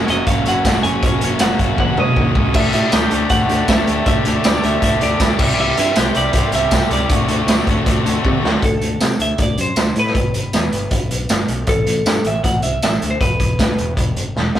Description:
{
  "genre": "indie rock",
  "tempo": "158 BPM",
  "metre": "4/4",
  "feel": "straight",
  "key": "D mixolydian",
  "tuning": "A4 = 440 Hz",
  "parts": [
    { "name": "twelve-string electric guitar", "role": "melody", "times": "0.0-13.9 s", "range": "A4 to G#5", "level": "-22 LUFS", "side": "right 1 dB", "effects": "none" },
    { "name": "crunchy overdriven guitar", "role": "riff", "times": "0.0-8.6 s", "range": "F#2 to G4", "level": "-21 LUFS", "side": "left 4 dB", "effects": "spring reverb" },
    { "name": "raw garage guitar", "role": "riff", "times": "0.0-8.6 s", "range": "C3 to G4", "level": "-24 LUFS", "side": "right 4 dB", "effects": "overdrive" },
    { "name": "picked electric bass", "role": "bass", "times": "0.0-14.6 s", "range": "E1 to C3", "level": "-22 LUFS", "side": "equal", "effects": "none" },
    { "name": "raw garage drum kit", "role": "drums", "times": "0.1-14.6 s", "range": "crash cymbal, hi-hat, kick drum, snare drum, tambourine, toms", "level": "-17 LUFS", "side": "equal", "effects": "none" },
    { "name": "glockenspiel with rubber mallets", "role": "second line", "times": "1.8-8.2 s", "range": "D6 to G6", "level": "-30 LUFS", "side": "right 5 dB", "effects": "none" }
  ],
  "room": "moderate small room reverb, RT60 0.5 s",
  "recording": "rough rehearsal-room recording, tube saturation",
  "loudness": "-14 LUFS",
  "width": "side -11 dB against mid",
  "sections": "0.0-8.6 A section; 8.6-14.6 B section",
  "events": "drum fill 1.8-2.6, 8.2-8.6, 14.4",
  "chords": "0.0 F#; 2.6 Dsus4; 5.4 Cadd9; 7.1 D; 10.2 G; 11.7 A5; 13.2 E5"
}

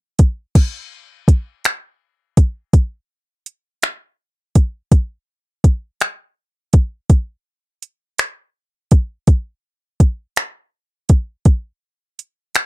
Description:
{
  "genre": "R&B",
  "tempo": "55 BPM (dotted quarters)",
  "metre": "6/8",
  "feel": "straight",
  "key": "none",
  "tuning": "none",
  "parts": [
    { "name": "smooth R&B drum kit", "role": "drums", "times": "0.2-12.7 s", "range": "crash cymbal, finger snaps, hi-hat, kick drum", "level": "-11 LUFS", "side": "equal", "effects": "overdrive" }
  ],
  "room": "little or no reverb",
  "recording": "dry, close 1970s-style studio recording",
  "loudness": "-15 LUFS",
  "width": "side -20 dB against mid",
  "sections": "0.5-12.7 A section",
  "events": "none",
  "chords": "none"
}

